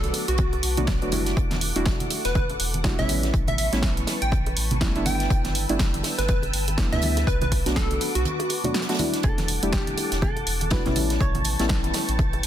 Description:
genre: deep house.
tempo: 122 BPM.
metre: 4/4.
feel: swing 58% on 16ths.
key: E dorian.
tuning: A4 = 439 Hz.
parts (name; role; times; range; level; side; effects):
plucky unison lead; melody; 0.0-8.8 s; F#4 to G5; -30 LUFS; equal; tape echo.
soft string machine; sustained chords; 0.0-12.5 s; A4 to E6; -34 LUFS; equal; phaser, ensemble chorus, sidechain pumping.
deep mellow chord stab; stabs; 0.0-12.5 s; F#3 to G4; -29 LUFS; equal; chorus, sidechain pumping, digital delay.
round analog bass; bass; 0.0-12.5 s; E1 to D2; -27 LUFS; equal; none.
compact cocktail drum kit; drums; 0.0-12.5 s; hi-hat, snare drum; -35 LUFS; right 3 dB; high-pass filter on hats, high-pass filter on snare, high-pass filter on room.
punchy analog drum machine; drums; 0.0-12.5 s; hi-hat, snare drum; -29 LUFS; right 1 dB; overdrive.
congas and bongos; percussion; 0.0-12.4 s; none; -33 LUFS; right 2 dB; none.
electronic kick drum; drums; 0.4-12.3 s; none; -24 LUFS; equal; overdrive.
archtop guitar, miked and amplified; melody; 9.2-12.2 s; G4 to C#5; -34 LUFS; right 2 dB; digital delay.
analog string pad; texture; 9.5-12.5 s; A5 to A6; -35 LUFS; left 2 dB; ensemble chorus.
room: digital ambience.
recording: dense, heavily limited modern master.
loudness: -21 LUFS.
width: side -11 dB against mid.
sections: 0.0-12.5 A section.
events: none.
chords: 0.0 Bm7; 1.4 Em11; 3.1 A9; 5.1 G69; 7.3 Bm7; 9.2 Em11; 11.0 A9.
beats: 0.39 0.88 | 1.37 1.86 2.35 2.85 | 3.34 3.83 4.32 4.81 | 5.30 5.80 6.29 6.78 | 7.27 7.76 8.26 8.75 | 9.24 9.73 10.22 10.71 | 11.21 11.70 12.19.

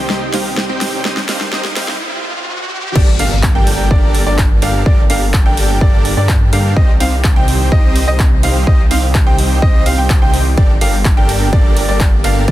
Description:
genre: EDM, festival progressive house.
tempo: 126 BPM.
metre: 4/4.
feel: straight.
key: G minor.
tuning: A4 = 440 Hz.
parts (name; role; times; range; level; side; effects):
lush unison pad; sustained chords; 0.0-12.5 s; D3 to G4; -26 LUFS; equal; none.
dense compressed supersaw; riff; 0.0-12.5 s; C4 to G5; -20 LUFS; right 1 dB; sidechain pumping, dub echo.
wide detuned saw bass; bass; 0.0-12.5 s; G1 to G2; -17 LUFS; equal; chorus, sidechain pumping.
riser and impact; sound effects; 0.2-4.9 s; none; -23 LUFS; equal; none.
big-room dance drum kit; drums; 0.1-12.5 s; crash cymbal, handclaps, hi-hat, ride cymbal, snare drum; -21 LUFS; equal; none.
warm baby grand piano; arpeggios; 3.0-12.5 s; D5 to G5; -21 LUFS; equal; sidechain pumping, dub echo.
electronic kick drum; drums; 3.0-12.5 s; none; -12 LUFS; equal; none.
room: digital ambience.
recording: dense, heavily limited modern master, high-pass filter.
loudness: -11 LUFS.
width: side -14 dB against mid.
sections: 0.0-3.0 A section; 3.0-12.5 B section.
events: build-up 0.0-3.0; drum fill 0.0-2.0; riser 0.2-3.0; break 2.0-3.0; drop 3.0-12.5; impact 3.0-4.9.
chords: 0.0 Cm; 3.0 Gmadd9; 6.8 Cm; 10.6 Gmadd9.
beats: 0.10 0.57 | 1.05 1.53 2.00 2.48 | 2.96 3.43 3.91 4.38 | 4.86 5.34 5.81 6.29 | 6.77 7.24 7.72 8.19 | 8.67 9.15 9.62 10.10 | 10.57 11.05 11.53 12.00 | 12.48.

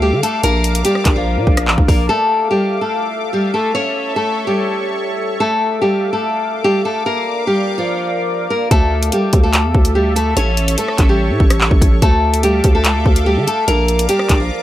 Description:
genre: hip hop, drill.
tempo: 145 BPM.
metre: 4/4.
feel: half-time.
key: D harmonic minor.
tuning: A4 = 441 Hz.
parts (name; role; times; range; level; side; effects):
nylon-string guitar; melody; 0.0-14.6 s; F3 to C#5; -17 LUFS; left 1 dB; none.
sweeping resonant pad; sustained chords; 0.0-14.6 s; A4 to D6; -23 LUFS; equal; chorus.
growling 808-style bass; bass; 0.0-2.1, 8.7-14.5 s; A1 to D3; -16 LUFS; equal; none.
drill drum kit; drums; 0.2-2.0, 8.7-14.4 s; handclaps, hi-hat, kick drum, rim click; -14 LUFS; equal; none.
room: little or no reverb.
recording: none.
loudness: -13 LUFS.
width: side -13 dB against mid.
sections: 0.0-2.1 A section; 2.1-14.6 A section.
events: none.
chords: 0.4 Bb; 2.1 Dmadd9; 3.7 A; 5.4 Dmadd9; 7.1 Bb; 8.7 Dmadd9; 10.4 A; 12.0 Dmadd9; 13.7 Bb.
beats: 0.02 | 0.43 0.85 1.26 1.68 | 2.09 2.50 2.92 3.33 | 3.75 4.16 4.57 4.99 | 5.40 5.82 6.23 6.64 | 7.06 7.47 7.88 8.30 | 8.71 9.12 9.54 9.95 | 10.37 10.78 11.19 11.61 | 12.02 12.44 12.85 13.26 | 13.68 14.09 14.50.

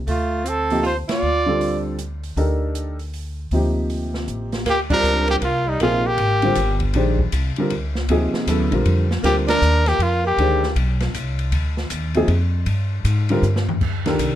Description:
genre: modal jazz.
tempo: 157 BPM.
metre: 3/4.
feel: swing 64% on 8ths.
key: D phrygian, G phrygian from 4.7 s.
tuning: A4 = 442 Hz.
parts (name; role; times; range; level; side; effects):
upright bass; bass; 0.0-14.4 s; G1 to Ab2; -21 LUFS; equal; none.
clear trumpet; melody; 0.1-1.8, 4.7-6.8, 9.2-10.7 s; Eb4 to D5; -20 LUFS; left 1 dB; plate reverb.
growling tenor saxophone; second line; 0.1-1.8, 4.7-6.8, 9.2-10.7 s; G3 to F4; -25 LUFS; right 6 dB; none.
open jazz drum kit; drums; 0.1-14.3 s; crash cymbal, hi-hat, kick drum, ride cymbal, snare drum, toms; -28 LUFS; left 1 dB; none.
warm concert grand piano; accompaniment; 0.7-14.4 s; C3 to C5; -22 LUFS; equal; none.
room: light reverb.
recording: dark, warm production.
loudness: -18 LUFS.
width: side -12 dB against mid.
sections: 0.0-4.7 A section; 4.7-13.8 B section.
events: band accent 1.0, 4.9, 9.4; drum fill 13.4-13.8.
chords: 0.0 Dm7; 4.7 Gm7; 13.8 D7(no3).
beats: | 0.08 0.46 0.84 | 1.23 1.61 1.99 | 2.37 2.75 3.13 | 3.52 3.90 4.28 | 4.66 5.04 5.42 | 5.80 6.19 6.57 | 6.95 7.33 7.71 | 8.09 8.47 8.86 | 9.24 9.62 10.00 | 10.38 10.76 11.14 | 11.53 11.91 12.29 | 12.67 13.05 13.43 | 13.81 14.20.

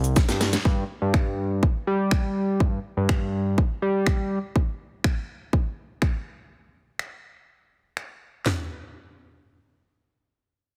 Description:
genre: dance-pop.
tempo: 123 BPM.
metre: 4/4.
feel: straight.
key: unclear.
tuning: A4 = 440 Hz.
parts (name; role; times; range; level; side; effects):
fat analog bass; bass; 0.0-4.4 s; C2 to G3; -27 LUFS; equal; sidechain pumping.
house drum kit; drums; 0.0-8.6 s; finger snaps, handclaps, hi-hat, kick drum, shaker, snare drum, toms; -24 LUFS; equal; none.
room: little or no reverb.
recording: heavily compressed radio sound, multiband compression.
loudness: -25 LUFS.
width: mono.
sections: 0.7-8.5 A section; 8.5-10.8 B section.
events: drum fill 0.2-0.7.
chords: none.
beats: 0.16 | 0.65 1.14 1.63 2.12 | 2.60 3.09 3.58 4.07 | 4.55 5.04 5.53 6.02 | 6.51 6.99 7.48 7.97 | 8.46.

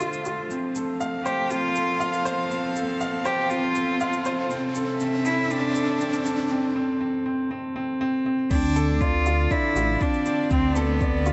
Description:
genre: piano and strings electronica.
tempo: 120 BPM.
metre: 4/4.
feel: straight.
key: unclear.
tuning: A4 = 440 Hz.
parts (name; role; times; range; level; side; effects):
warm cello; melody; 0.0-11.3 s; B3 to G4; -29 LUFS; equal; delay.
warm string quartet; sustained chords; 0.0-11.3 s; C3 to F5; -35 LUFS; equal; sidechain pumping.
warm baby grand piano; riff; 0.0-11.3 s; C4 to F5; -28 LUFS; equal; delay.
electronic shaker and crash cymbal; drums; 0.0-11.3 s; none; -46 LUFS; equal; none.
riser; sound effects; 0.0-6.5 s; none; -36 LUFS; equal; none.
dark detuned saw bass; bass; 8.5-11.3 s; A1 to D2; -27 LUFS; equal; sidechain pumping.
electronic kick drum; drums; 8.5-11.1 s; none; -28 LUFS; equal; none.
room: wet concert hall reverb, RT60 2.1 s.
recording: nothing above 8.0 kHz.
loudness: -24 LUFS.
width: mono.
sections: 0.0-8.5 A section; 8.5-11.3 B section.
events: build-up 0.0-8.5; riser 0.0-6.5; break 6.5-8.5; drop 8.5-11.3.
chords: 0.0 Dm7; 0.5 F; 4.5 C6; 8.5 Dm7.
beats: 0.01 | 0.51 1.01 1.51 2.01 | 2.51 3.01 3.51 4.01 | 4.51 5.01 5.51 6.01 | 6.51 7.01 7.51 8.01 | 8.51 9.01 9.51 10.01 | 10.51 11.01.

